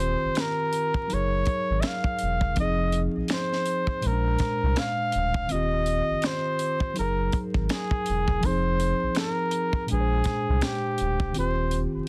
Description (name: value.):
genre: R&B, neo-soul.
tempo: 82 BPM.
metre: 4/4.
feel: swing 57% on 16ths.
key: F dorian.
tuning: A4 = 441 Hz.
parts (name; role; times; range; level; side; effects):
warm flugelhorn; melody; 0.0-11.8 s; G4 to F5; -30 LUFS; equal; plate reverb.
mellow tine electric piano; accompaniment; 0.0-12.1 s; Bb2 to C5; -33 LUFS; equal; none.
sub bass with octave; bass; 0.0-12.0 s; D1 to C2; -30 LUFS; equal; none.
tight funk drum kit; drums; 0.0-11.9 s; finger snaps, hi-hat, kick drum, snare drum; -32 LUFS; equal; none.
room: light reverb.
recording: dense, heavily limited modern master, vinyl crackle.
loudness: -26 LUFS.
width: mono.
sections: 0.0-12.1 A section.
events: none.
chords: 0.0 Eb69; 1.1 Gb69; 2.6 Fm7; 4.0 Bb9; 5.5 Eb69; 7.0 Gb69; 8.4 Fm7; 9.9 Bb9; 11.4 Eb69.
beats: 0.38 1.11 1.84 | 2.58 3.31 4.04 4.77 | 5.50 6.23 6.96 7.70 | 8.43 9.16 9.89 10.62 | 11.36.